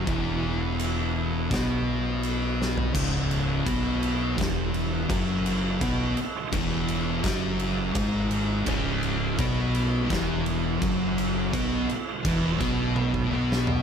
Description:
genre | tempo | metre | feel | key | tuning
stoner and doom metal | 84 BPM | 4/4 | straight | C# minor | A4 = 438 Hz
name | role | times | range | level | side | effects
thick fuzz guitar | riff | 0.0-13.8 s | C#2 to B3 | -29 LUFS | left 9 dB | distortion
thick fuzz guitar | riff | 0.0-13.8 s | C#2 to B3 | -30 LUFS | right 9 dB | distortion
fuzz fingered electric bass | bass | 0.0-13.8 s | C#1 to B1 | -31 LUFS | equal | overdrive
oversized low-tuned drum kit | drums | 0.1-13.8 s | crash cymbal, kick drum, snare drum, toms | -30 LUFS | right 1 dB | none
sludgy distorted guitar | riff | 8.7-13.8 s | C#2 to B3 | -31 LUFS | right 1 dB | overdrive
room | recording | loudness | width
light reverb | none | -24 LUFS | side -7 dB against mid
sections
0.0-2.9 A section; 2.9-13.8 B section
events
drum fill 2.6-2.9, 13.0-13.8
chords
0.0 N.C.; 2.9 C#m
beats
| 0.07 0.79 1.51 2.23 | 2.94 3.66 4.37 5.09 | 5.80 6.52 7.24 7.95 | 8.67 9.38 10.10 10.81 | 11.53 12.24 12.96 13.68

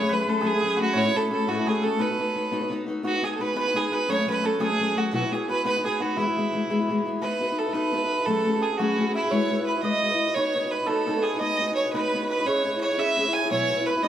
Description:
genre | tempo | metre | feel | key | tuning
celtic folk, Celtic jig | 115 BPM (dotted quarters) | 6/8 | straight | unclear | A4 = 440 Hz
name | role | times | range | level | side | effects
clear fiddle | melody | 0.0-14.1 s | E4 to G#5 | -25 LUFS | right 2 dB | none
hammered dulcimer | second line | 0.0-14.1 s | E4 to G#5 | -29 LUFS | right 2 dB | none
fingerpicked steel-string acoustic guitar | accompaniment | 0.0-14.1 s | A2 to C#5 | -27 LUFS | left 2 dB | none
room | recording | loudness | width
wet studio reverb, RT60 0.6 s | band playing live in one room | -22 LUFS | side -10 dB against mid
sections
0.0-7.2 A section; 7.2-14.1 B section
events
none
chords
0.0 F#madd9; 1.0 A; 2.0 B; 4.1 F#m; 5.1 Bsus4; 5.7 B; 6.2 E; 7.2 B; 8.3 F#madd9; 9.3 Eadd9/G#; 10.4 B; 12.5 C#m; 13.5 Bsus4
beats
0.44 | 0.96 1.48 | 2.00 2.52 | 3.04 3.56 | 4.08 4.61 | 5.13 5.65 | 6.17 6.70 | 7.22 7.74 | 8.27 8.79 | 9.31 9.84 | 10.36 10.89 | 11.41 11.93 | 12.46 12.98 | 13.50 14.03

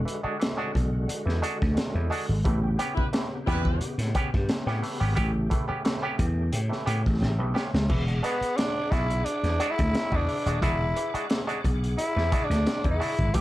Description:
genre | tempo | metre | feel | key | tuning
funk | 88 BPM | 4/4 | straight | E mixolydian | A4 = 440 Hz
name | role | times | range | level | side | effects
bright tonewheel organ | sustained chords | 0.0-13.4 s | C#3 to D6 | -36 LUFS | left 1 dB | fast rotary speaker, chorus vibrato
vintage slap bass | bass | 0.0-13.4 s | D#1 to A2 | -26 LUFS | equal | none
bright clav | stabs | 0.1-13.4 s | A2 to G4 | -32 LUFS | right 1 dB | auto-wah
crunchy breakbeat drum kit | drums | 0.1-13.4 s | crash cymbal, hi-hat, kick drum, snare drum | -29 LUFS | equal | none
warm horn section | second line | 2.9-3.9 s | G3 to B4 | -33 LUFS | left 1 dB | none
breathy tenor saxophone | melody | 8.2-13.4 s | B3 to G4 | -28 LUFS | equal | tape echo
room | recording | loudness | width
light reverb | none | -24 LUFS | side -16 dB against mid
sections
0.0-7.9 A section; 7.9-13.4 B section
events
drum fill 7.2-7.9; tenor saxophone solo 7.9-13.4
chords
0.0 E9; 2.5 A9; 7.9 E9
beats
0.41 1.09 1.77 | 2.45 3.13 3.81 4.49 | 5.17 5.86 6.54 7.22 | 7.90 8.58 9.26 9.94 | 10.62 11.30 11.98 12.66 | 13.35

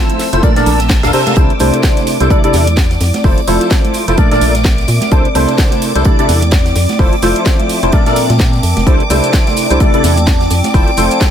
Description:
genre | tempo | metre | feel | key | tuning
piano house | 128 BPM | 4/4 | swing 58% on 16ths | C mixolydian | A4 = 442 Hz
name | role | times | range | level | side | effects
string machine, violins | sustained chords | 0.0-11.3 s | D6 to E6 | -22 LUFS | equal | ensemble chorus, sidechain pumping
percussive organ stab | riff | 0.0-11.3 s | Bb2 to F5 | -15 LUFS | equal | ensemble chorus, sidechain pumping
warbly tape-like pad | texture | 0.0-11.3 s | F3 to A5 | -20 LUFS | left 1 dB | chorus, built-in reverb, sidechain pumping
house drum kit | drums | 0.1-11.3 s | hi-hat, shaker, snare drum | -20 LUFS | equal | none
congas and tambourine | percussion | 0.1-11.3 s | none | -22 LUFS | right 4 dB | none
crisp fusion drum kit | drums | 0.2-11.3 s | hi-hat, snare drum | -27 LUFS | right 2 dB | high-pass filter on hats, high-pass filter on snare, high-pass filter on room
organ-like FM bass | bass | 0.3-11.1 s | F1 to Bb2 | -14 LUFS | equal | sidechain pumping
electronic kick drum | drums | 0.4-11.3 s | none | -12 LUFS | equal | none
reverse cymbal | sound effects | 0.7-1.4 s | none | -25 LUFS | right 7 dB | none
room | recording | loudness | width
small room ambience | none | -9 LUFS | side -9 dB against mid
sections
0.0-11.3 A section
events
reverse cymbal 0.7-1.4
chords
0.4 Bbmaj9; 1.4 C69; 3.0 Fmaj7; 4.2 Bbmaj9; 5.1 C69; 6.8 Fmaj7; 7.9 Bbmaj9; 8.9 C69; 10.5 Fmaj7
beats
0.43 0.90 | 1.37 1.83 2.30 2.77 | 3.24 3.71 4.18 4.65 | 5.12 5.58 6.05 6.52 | 6.99 7.46 7.93 8.40 | 8.87 9.34 9.80 10.27 | 10.74 11.21

